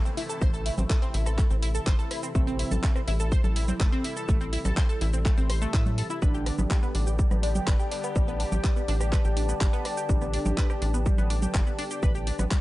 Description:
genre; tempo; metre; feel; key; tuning
melodic techno; 124 BPM; 4/4; straight; A minor; A4 = 441 Hz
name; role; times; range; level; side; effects
sweeping resonant pad; sustained chords; 0.0-12.6 s; C3 to G4; -39 LUFS; equal; chorus, sidechain pumping
tight sequenced synth; arpeggios; 0.0-12.6 s; G3 to E6; -34 LUFS; equal; chorus, phaser, sidechain pumping, analog delay
downlifter; sound effects; 0.0-2.4 s; none; -49 LUFS; equal; none
warbly tape-like pad; texture; 0.0-12.6 s; G4 to B5; -37 LUFS; left 2 dB; chorus, built-in reverb, sidechain pumping
house drum kit; drums; 0.1-12.6 s; congas, handclaps, hi-hat, rim click, shaker; -34 LUFS; right 1 dB; none
tight sequencer bass; bass; 0.4-12.5 s; G1 to A2; -27 LUFS; equal; sidechain pumping
electronic kick drum; drums; 0.4-12.6 s; none; -24 LUFS; equal; none
fat analog lead; melody; 2.4-3.0, 6.2-6.9, 10.1-10.7 s; C4 to D4; -37 LUFS; right 2 dB; wide subtle chorus, sidechain pumping, tape echo
room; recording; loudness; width
little or no reverb; dry, gritty hardware recording, nothing above 10.9 kHz; -23 LUFS; side -17 dB against mid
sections
0.0-12.6 A section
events
none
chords
0.0 Am; 6.2 G

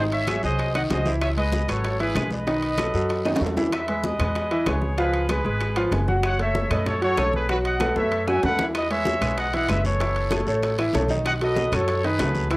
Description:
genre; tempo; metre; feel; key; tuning
latin, salsa; 191 BPM; 4/4; straight; E major; A4 = 441 Hz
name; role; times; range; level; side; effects
clear trumpet section; melody; 0.0-12.6 s; F#4 to G#5; -26 LUFS; equal; cassette tape
clear concert grand piano; accompaniment; 0.0-12.6 s; D#3 to F#5; -25 LUFS; equal; cassette tape
upright bass; bass; 0.0-12.6 s; F#1 to F#2; -27 LUFS; equal; none
bongos; percussion; 0.1-12.6 s; none; -32 LUFS; left 2 dB; none
congas; percussion; 0.1-12.6 s; none; -33 LUFS; equal; none
timbales; percussion; 0.1-12.6 s; none; -34 LUFS; right 2 dB; none
claves; percussion; 0.3-12.3 s; none; -37 LUFS; left 2 dB; none
guiro; percussion; 0.3-3.7, 8.7-12.6 s; none; -40 LUFS; left 1 dB; none
room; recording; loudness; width
moderate small room reverb, RT60 0.5 s; home recording on cassette; -20 LUFS; side -21 dB against mid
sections
0.0-3.7 A section; 3.7-12.6 A section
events
drum fill 3.3-3.7, 7.8-8.7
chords
0.0 G#7; 1.2 C#m11; 2.5 B7; 3.7 Emaj7; 5.0 C#7; 6.2 F#m7; 7.5 B7sus4; 8.7 Emaj7; 10.0 F#m7; 11.3 B7

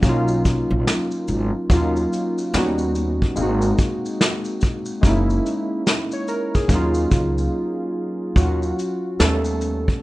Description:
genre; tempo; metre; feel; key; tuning
lo-fi hip hop; 72 BPM; 4/4; swing 61% on 16ths; Eb minor; A4 = 440 Hz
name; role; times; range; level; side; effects
warbly lo-fi synth keys; accompaniment; 0.0-10.0 s; F#3 to Db5; -22 LUFS; equal; chorus, cassette tape, low-pass filter
upright bass; bass; 0.0-9.9 s; Gb1 to Eb2; -22 LUFS; equal; none
vintage brush drum kit; drums; 0.0-10.0 s; hi-hat, kick drum, shaker, snare drum; -20 LUFS; equal; vintage 12-bit sampler grit
room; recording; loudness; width
light reverb; rough home demo mix; -18 LUFS; side -18 dB against mid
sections
0.0-8.4 A section; 8.4-10.0 A section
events
break 7.5-8.4; synth keys solo 8.4-10.0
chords
0.0 Bmaj9#11; 1.7 Ebm9; 2.5 Eb7alt; 3.4 Ab9; 5.0 Gb13; 6.7 Ebm7; 8.4 Ebm9; 9.2 Ebaug7

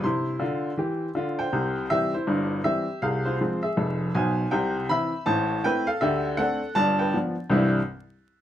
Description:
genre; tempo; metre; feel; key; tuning
jazz, stride piano; 161 BPM; 4/4; swing 62% on 8ths; C major; A4 = 438 Hz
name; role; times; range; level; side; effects
clear upright piano; solo; 0.0-7.8 s; F1 to C6; -23 LUFS; equal; none
room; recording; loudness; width
moderate club reverb, RT60 0.5 s; minimal, uncompressed stereo recording, vinyl crackle; -23 LUFS; side -11 dB against mid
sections
0.0-1.5 A section; 1.5-7.5 B section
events
none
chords
0.0 C; 3.0 Fm/C; 4.5 C; 5.3 Am; 6.0 D7; 6.8 G7; 7.5 C

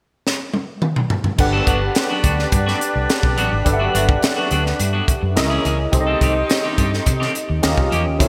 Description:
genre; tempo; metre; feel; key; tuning
polished 1980s jazz-funk pop; 106 BPM; 4/4; straight; G major; A4 = 441 Hz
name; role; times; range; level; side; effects
crisp fusion drum kit; drums; 0.3-8.3 s; crash cymbal, hi-hat, kick drum, snare drum, toms; -22 LUFS; equal; gated reverb
mellow horn section; second line; 1.4-8.3 s; D4 to F5; -27 LUFS; equal; digital delay
barky tine electric piano; accompaniment; 1.4-8.3 s; C4 to F#5; -25 LUFS; equal; analog chorus
clean electric guitar; riff; 1.4-8.2 s; Eb3 to A4; -27 LUFS; equal; lush chorus
vintage muted fingered electric bass; bass; 1.4-8.3 s; G1 to C3; -24 LUFS; equal; none
room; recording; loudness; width
moderate lush hall reverb, RT60 2.6 s; bright 1980s-style digital production; -18 LUFS; mono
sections
0.0-1.4 A section; 1.4-8.3 B section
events
drum fill 0.3-1.4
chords
0.0 N.C.; 1.4 Gmaj7; 5.4 C#m6; 5.9 Cm6; 7.6 Eb9

